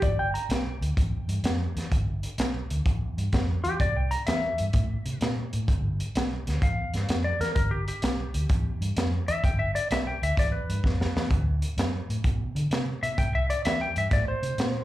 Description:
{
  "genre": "electric blues shuffle",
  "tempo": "128 BPM",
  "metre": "4/4",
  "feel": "swing 68% on 8ths",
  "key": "G mixolydian",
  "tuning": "A4 = 441 Hz",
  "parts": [
    { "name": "clean lap steel guitar", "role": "melody", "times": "0.0-14.8 s", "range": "G4 to Bb5", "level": "-29 LUFS", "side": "left 1 dB", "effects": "slapback echo" },
    { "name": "vintage muted fingered electric bass", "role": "bass", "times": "0.0-14.8 s", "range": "G1 to D3", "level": "-28 LUFS", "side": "equal", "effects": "none" },
    { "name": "crunchy breakbeat drum kit", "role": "drums", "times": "0.0-14.7 s", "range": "hi-hat, kick drum, snare drum", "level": "-28 LUFS", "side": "equal", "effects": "slapback echo" }
  ],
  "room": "little or no reverb",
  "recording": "live gig heard through the venue's PA, club reverb",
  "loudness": "-24 LUFS",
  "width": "side -15 dB against mid",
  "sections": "0.0-14.8 A section",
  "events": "drum fill 10.8-11.3",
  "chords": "0.0 G7; 3.8 C7; 5.7 G7; 11.3 D7; 13.2 C7"
}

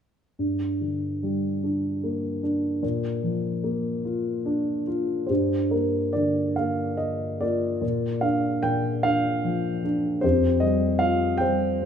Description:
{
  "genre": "classical, lyrical solo piano",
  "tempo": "73 BPM",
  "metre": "3/4",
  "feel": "uneven beats, rubato",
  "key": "G minor",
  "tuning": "A4 = 441 Hz",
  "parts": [
    { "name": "dark grand piano", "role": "solo", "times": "0.4-11.9 s", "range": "F2 to G5", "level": "-22 LUFS", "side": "equal", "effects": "none" }
  ],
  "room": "moderate scoring stage reverb, RT60 2.0 s",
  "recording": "minimal, uncompressed stereo recording",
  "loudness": "-23 LUFS",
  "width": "side -8 dB against mid",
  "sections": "0.4-5.3 A section; 5.3-11.9 B section",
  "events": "none",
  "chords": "0.4 Gm; 2.8 Bb; 5.3 Gm; 7.8 Bb; 10.2 Fsus2"
}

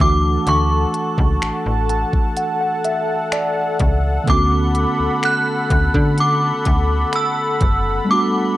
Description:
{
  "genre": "contemporary R&B",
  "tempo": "63 BPM",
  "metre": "4/4",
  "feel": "straight",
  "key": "unclear",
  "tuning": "A4 = 439 Hz",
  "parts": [
    { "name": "synth chime", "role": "melody", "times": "0.0-8.6 s", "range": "C#6 to F#6", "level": "-20 LUFS", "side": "right 1 dB", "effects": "ensemble chorus" },
    { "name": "mellow tine electric piano", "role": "accompaniment", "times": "0.0-8.6 s", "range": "D3 to A5", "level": "-22 LUFS", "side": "right 1 dB", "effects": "medium stereo tremolo, cassette tape" },
    { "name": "warm analog pad", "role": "sustained chords", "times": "0.0-8.6 s", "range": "A4 to B5", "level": "-23 LUFS", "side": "left 2 dB", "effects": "chorus, sidechain pumping, cassette tape" },
    { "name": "slap-like FM bass", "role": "bass", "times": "0.0-8.0 s", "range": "F#1 to D3", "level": "-19 LUFS", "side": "equal", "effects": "none" },
    { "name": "smooth R&B drum kit", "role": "drums", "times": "0.5-7.8 s", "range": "finger snaps, hi-hat, kick drum", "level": "-20 LUFS", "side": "equal", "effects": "cassette tape" }
  ],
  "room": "light reverb, digital ambience",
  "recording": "home recording on cassette",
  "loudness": "-15 LUFS",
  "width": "side -15 dB against mid",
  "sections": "0.0-8.6 A section",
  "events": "tine electric piano fill 1.4-4.3",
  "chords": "0.0 Dmaj7; 4.3 Bm7/D"
}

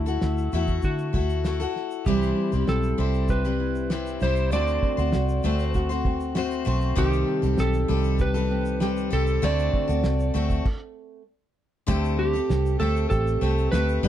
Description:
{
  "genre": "acoustic pop",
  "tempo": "98 BPM",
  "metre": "4/4",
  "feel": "straight",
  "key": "unclear",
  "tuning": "A4 = 440 Hz",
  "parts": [
    { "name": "electric slide guitar", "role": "melody", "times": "0.0-14.1 s", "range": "E4 to D5", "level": "-28 LUFS", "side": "right 2 dB", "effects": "none" },
    { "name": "picked steel-string acoustic guitar", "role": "accompaniment", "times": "0.0-14.1 s", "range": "C3 to C5", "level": "-28 LUFS", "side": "left 6 dB", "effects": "none" },
    { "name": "vintage muted fingered electric bass", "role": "bass", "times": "0.0-14.1 s", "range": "G1 to D3", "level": "-25 LUFS", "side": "equal", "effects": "none" },
    { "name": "cloth-damped thuddy drum kit", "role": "drums", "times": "0.1-14.0 s", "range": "crash cymbal, kick drum, shaker, snare drum", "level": "-27 LUFS", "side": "equal", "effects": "none" },
    { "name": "nylon-string guitar", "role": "arpeggios", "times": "2.1-14.1 s", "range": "Eb3 to G4", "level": "-32 LUFS", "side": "right 7 dB", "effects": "none" }
  ],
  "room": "little or no reverb",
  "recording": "dark, warm production",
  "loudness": "-22 LUFS",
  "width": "side -11 dB against mid",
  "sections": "0.0-2.1 A section; 2.1-11.9 B section; 11.9-14.1 C section",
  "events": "stop 10.7-11.9",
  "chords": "0.0 Dadd9; 2.1 C; 4.5 D7; 7.0 Cm6; 9.4 D7; 11.9 D7sus4"
}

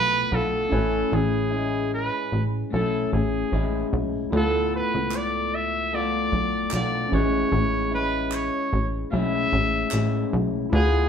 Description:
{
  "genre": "indie pop, bedroom pop",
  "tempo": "75 BPM",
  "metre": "4/4",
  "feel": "swing 55% on 16ths",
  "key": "A major",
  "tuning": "A4 = 439 Hz",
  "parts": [
    { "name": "clear trumpet", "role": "melody", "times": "0.0-11.1 s", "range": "G#4 to E5", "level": "-26 LUFS", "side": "equal", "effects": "none" },
    { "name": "electric guitar through a small old amp", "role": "accompaniment", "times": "0.0-11.1 s", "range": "A2 to F4", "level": "-28 LUFS", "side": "left 5 dB", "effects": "warbly pitch drift" },
    { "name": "overdriven tine electric piano", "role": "accompaniment", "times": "0.0-11.1 s", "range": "A3 to G#5", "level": "-31 LUFS", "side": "right 2 dB", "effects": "none" },
    { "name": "plucky analog bass", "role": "bass", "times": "0.0-11.1 s", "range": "A1 to D2", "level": "-26 LUFS", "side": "equal", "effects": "none" },
    { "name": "group handclap", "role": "percussion", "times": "5.1-10.1 s", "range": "none", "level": "-36 LUFS", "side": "right 4 dB", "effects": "none" }
  ],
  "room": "wet studio reverb, RT60 0.8 s",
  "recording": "band playing live in one room",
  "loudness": "-22 LUFS",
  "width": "side -7 dB against mid",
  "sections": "0.0-11.1 A section",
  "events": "none",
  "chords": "0.0 Dm6; 0.7 Amaj7; 4.3 Dm6; 7.1 Amaj7"
}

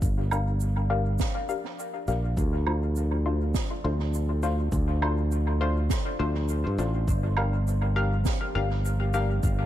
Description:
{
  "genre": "ambient dub",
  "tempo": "102 BPM",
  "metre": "4/4",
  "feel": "swing 60% on 16ths",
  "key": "G minor",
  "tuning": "A4 = 442 Hz",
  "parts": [
    { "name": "warbly tape-like pad", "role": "sustained chords", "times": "0.0-9.7 s", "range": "F3 to D5", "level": "-40 LUFS", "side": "equal", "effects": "chorus, built-in reverb" },
    { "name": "modern bright fingered electric bass", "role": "bass", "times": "0.0-9.7 s", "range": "G1 to G2", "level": "-25 LUFS", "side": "equal", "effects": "tube saturation" },
    { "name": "electronic kick drum", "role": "drums", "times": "0.0-9.6 s", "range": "none", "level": "-28 LUFS", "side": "equal", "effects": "none" },
    { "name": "shaker, woodblock and snare drum", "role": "drums", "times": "0.0-9.6 s", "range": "none", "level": "-36 LUFS", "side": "right 6 dB", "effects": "dub echo" },
    { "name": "filtered dub chord stab", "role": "stabs", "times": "0.3-9.3 s", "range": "A3 to F5", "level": "-32 LUFS", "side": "left 4 dB", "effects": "lush chorus, dub echo" }
  ],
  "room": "studio reverb",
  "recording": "echo-heavy mix",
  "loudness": "-24 LUFS",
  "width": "side -12 dB against mid",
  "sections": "0.0-9.7 A section",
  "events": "fade-in on ambient pad 0.0-9.7",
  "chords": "0.0 Gm7; 2.4 Dm7; 7.1 Gm7"
}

